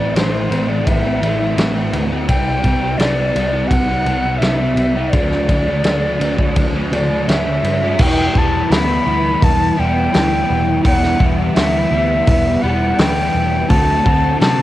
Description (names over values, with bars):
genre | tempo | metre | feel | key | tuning
rock, shoegaze and dream pop | 84 BPM | 4/4 | straight | unclear | A4 = 440 Hz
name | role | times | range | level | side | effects
bright reedy concert flute | melody | 0.0-14.6 s | C5 to B5 | -20 LUFS | left 1 dB | none
crunchy overdriven guitar | riff | 0.0-14.6 s | A2 to F#4 | -18 LUFS | equal | ensemble chorus, cassette tape
vintage muted picked electric bass | bass | 0.0-14.6 s | E1 to C3 | -21 LUFS | equal | transformer saturation
loose indie drum kit | drums | 0.2-14.6 s | crash cymbal, hi-hat, kick drum, ride cymbal, snare drum | -18 LUFS | equal | cassette tape
room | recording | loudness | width
little or no reverb | home recording on cassette | -13 LUFS | side -14 dB against mid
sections
0.0-8.0 A section; 8.0-14.6 B section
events
none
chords
0.0 Am; 2.3 Cadd9; 5.1 D; 8.0 Em7; 13.7 D7